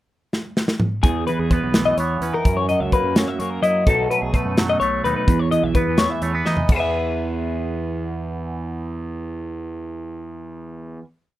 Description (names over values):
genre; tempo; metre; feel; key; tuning
math rock and midwest emo; 85 BPM (dotted quarters); 6/8; straight; E major; A4 = 440 Hz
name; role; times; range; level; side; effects
modern studio drum kit; drums; 0.3-6.8 s; crash cymbal, hi-hat, kick drum, snare drum, toms; -20 LUFS; equal; none
twangy electric guitar; accompaniment; 1.0-11.1 s; E2 to A4; -24 LUFS; right 4 dB; phaser
twelve-string electric guitar; arpeggios; 1.0-11.1 s; G#4 to E5; -22 LUFS; left 4 dB; none
fuzz fingered electric bass; bass; 1.0-11.0 s; B1 to F#3; -28 LUFS; equal; overdrive
room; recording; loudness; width
light reverb; rough home demo mix; -18 LUFS; side -14 dB against mid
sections
0.0-1.0 pickup bar; 1.0-6.7 A section; 6.7-9.5 final chord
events
drum fill 0.3-1.0, 6.5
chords
0.0 N.C.; 1.0 Emaj7; 2.4 F#7; 3.9 B7; 5.3 E5; 6.7 E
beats
0.32 | 1.03 1.74 | 2.45 3.15 | 3.86 4.57 | 5.28 5.98 | 6.69 7.40 | 8.11 8.82